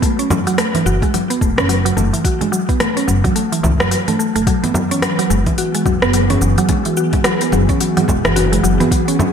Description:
organic downtempo; 108 BPM; 4/4; swing 59% on 16ths; F# minor; A4 = 439 Hz
mallet-like synth pluck; arpeggios; 0.0-9.3 s; E3 to F#4; -17 LUFS; equal; chorus, ping-pong delay
electronic kick drum; drums; 0.0-9.0 s; -18 LUFS; equal; overdrive, small room ambience
organic electronic drum kit; drums; 0.0-9.3 s; cabasa, congas, hi-hat, rim click; -20 LUFS; right 1 dB; overdrive, small room ambience, gated reverb
frame drum; percussion; 0.3-9.3 s; -23 LUFS; right 1 dB
upright bass; bass; 0.9-8.8 s; E1 to C#2; -18 LUFS; equal; tube saturation
airy breathy pad; sustained chords; 4.9-9.3 s; E3 to G#4; -21 LUFS; equal; chorus, sidechain pumping
moderate lush hall reverb, RT60 1.8 s; bright 1980s-style digital production; -13 LUFS; side -7 dB against mid
0.0-9.3 A section
0.0 F#m7; 4.5 E
| 0.03 0.58 1.14 1.69 | 2.25 2.80 3.36 3.91 | 4.47 5.03 5.58 6.14 | 6.69 7.25 7.80 8.36 | 8.91

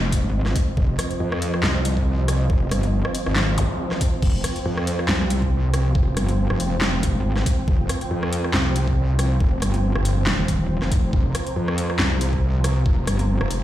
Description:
heavy wobble dubstep; 139 BPM; 4/4; swing 55% on 16ths, half-time; A4 = 438 Hz
supersaw chords; sustained chords; 0.0-13.6 s; F3 to Bb5; -28 LUFS; right 1 dB; sidechain pumping, low-pass filter
wobble bass; bass; 0.0-13.6 s; F1 to C2; -21 LUFS; equal; chorus, overdrive
dubstep drum kit; drums; 0.1-13.6 s; crash cymbal, handclaps, hi-hat, rim click, snare drum; -26 LUFS; equal
electronic kick drum; drums; 0.1-13.0 s; -21 LUFS; equal; overdrive
metallic wobble bass; bass; 0.2-13.4 s; Eb1 to F2; -22 LUFS; equal; chorus, overdrive
zap; sound effects; 3.6-3.7 s; -31 LUFS; equal
little or no reverb; played on a big sound system in a bare room, large studio reverb; -19 LUFS; side -13 dB against mid
0.0-13.6 A section
0.0 F5
0.34 | 0.77 1.20 1.64 2.07 | 2.50 2.93 3.36 3.79 | 4.22 4.66 5.09 5.52 | 5.95 6.38 6.82 7.25 | 7.68 8.11 8.54 8.97 | 9.40 9.84 10.27 10.70 | 11.13 11.56 11.99 12.43 | 12.86 13.29

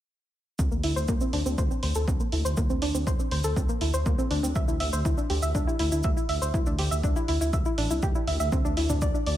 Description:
melodic techno; 121 BPM; 4/4; straight; A4 = 440 Hz
soft round pluck; arpeggios; 0.6-9.3 s; Bb3 to E5; -29 LUFS; equal; chorus, cassette tape, sidechain pumping, analog delay
dark detuned saw bass; bass; 0.6-9.4 s; A1 to D2; -28 LUFS; equal; tube saturation, sidechain pumping
electronic kick drum; drums; 0.6-9.1 s; -27 LUFS; equal
tube shaker; percussion; 0.6-9.2 s; -40 LUFS; right 2 dB
punchy analog drum machine; drums; 0.8-9.4 s; hi-hat, toms; -35 LUFS; right 2 dB
light reverb, digital ambience; -24 LUFS; side -12 dB against mid
0.6-9.4 A section
0.6 Csus2/D; 4.6 Asus4 (rootless); 8.5 D7(no3)
| 0.59 1.08 1.58 2.08 | 2.57 3.07 3.56 4.06 | 4.56 5.05 5.55 6.04 | 6.54 7.04 7.53 8.03 | 8.52 9.02

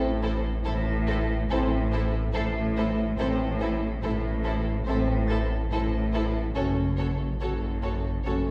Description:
cinematic, suspense film score; 71 BPM; 4/4; straight; A4 = 439 Hz
mellow French horn section; sustained chords; 0.0-8.5 s; A3 to C#4; -33 LUFS; equal
rich studio cello section; bass; 0.0-8.5 s; F#2 to A2; -33 LUFS; equal
rich studio double bass section; bass; 0.0-8.5 s; F#1 to A1; -33 LUFS; equal
warm sub bass; drone; 0.0-8.5 s; A1; -33 LUFS; equal
concert harp; texture; 0.0-8.5 s; A6 to C7; -43 LUFS; equal
warm symphonic violin section; melody; 0.2-8.3 s; C5 to C#5; -42 LUFS; equal
warm studio violin section; second line; 0.2-8.3 s; A4; -39 LUFS; equal
warm studio viola section; accompaniment; 0.2-8.3 s; E4 to F#4; -39 LUFS; equal
wet recital hall reverb, RT60 1.3 s; recorded in a church or concert hall; -27 LUFS; mono
0.0-8.5 A section
0.0 Am; 6.6 F#m
0.66 1.50 2.35 | 3.19 4.03 4.87 5.71 | 6.56 7.41 8.26

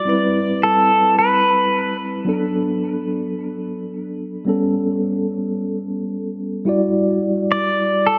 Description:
sunset chillout; 109 BPM; 4/4; swing 56% on 16ths; E minor; A4 = 440 Hz
pedal steel guitar; melody; 0.0-2.0, 7.5-8.2 s; A4 to D5; -19 LUFS; equal; tape echo
mellow tine electric piano; accompaniment; 0.0-8.2 s; F#3 to D5; -22 LUFS; equal; tape echo
wet lush hall reverb, RT60 2.5 s; -19 LUFS; mono
0.0-8.2 A section
0.1 Cmaj7; 2.3 Bm7; 4.5 A9; 6.7 Em9
| 0.06 0.61 1.16 1.71 | 2.27 2.81 3.37 3.92 | 4.47 5.02 5.57 6.12 | 6.67 7.22 7.77

